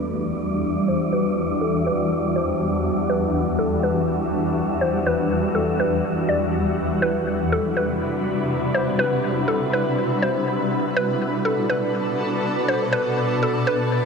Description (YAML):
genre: hip hop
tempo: 122 BPM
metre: 4/4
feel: half-time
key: E minor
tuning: A4 = 440 Hz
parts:
  - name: mallet-like synth pluck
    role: melody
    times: 0.0-14.1 s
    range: A4 to D5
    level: -25 LUFS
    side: equal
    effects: chorus, low-pass filter, ping-pong delay
  - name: shimmering ambient pad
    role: sustained chords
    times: 0.0-14.1 s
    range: E2 to B4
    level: -22 LUFS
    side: equal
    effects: chorus, built-in reverb, low-pass filter
  - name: wind-like tuned noise texture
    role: texture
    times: 0.0-14.1 s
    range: G3 to E5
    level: -30 LUFS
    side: equal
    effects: built-in reverb
room: moderate huge ambient reverb, RT60 4.5 s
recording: none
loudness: -19 LUFS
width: side -5 dB against mid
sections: 0.0-14.1 A section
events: filter sweep 0.0-14.1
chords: 0.0 Em7; 7.0 Cmaj9#11; 11.0 Bm7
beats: 0.14 0.63 | 1.12 1.62 2.11 2.60 | 3.09 3.58 4.08 4.57 | 5.06 5.55 6.04 6.54 | 7.03 7.52 8.01 8.50 | 8.99 9.49 9.98 10.47 | 10.96 11.45 11.95 12.44 | 12.93 13.42 13.91